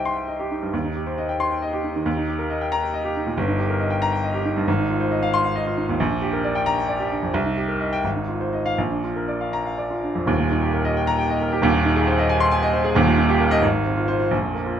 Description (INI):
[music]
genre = classical, virtuoso piano study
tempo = 78-93 BPM (dotted quarters)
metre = 6/8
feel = rubato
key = Eb major from 4.7 s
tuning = A4 = 440 Hz
[part]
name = warm baby grand piano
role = solo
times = 0.0-14.8 s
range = Eb1 to C6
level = -19 LUFS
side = equal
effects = none
[sound]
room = light reverb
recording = close, detailed microphones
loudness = -19 LUFS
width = side -9 dB against mid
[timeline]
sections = 0.0-10.3 A section; 10.3-14.8 B section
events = none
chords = 0.0 Cm; 0.7 Cm/Eb; 2.1 Eb; 3.4 Eb/G; 4.7 Fm7/Ab; 6.0 Bb6; 7.3 Cm7; 8.0 Fm7/Ab; 8.8 Bb; 10.3 Eb; 11.6 Ab/Eb; 13.0 Eb; 13.6 Fm/Ab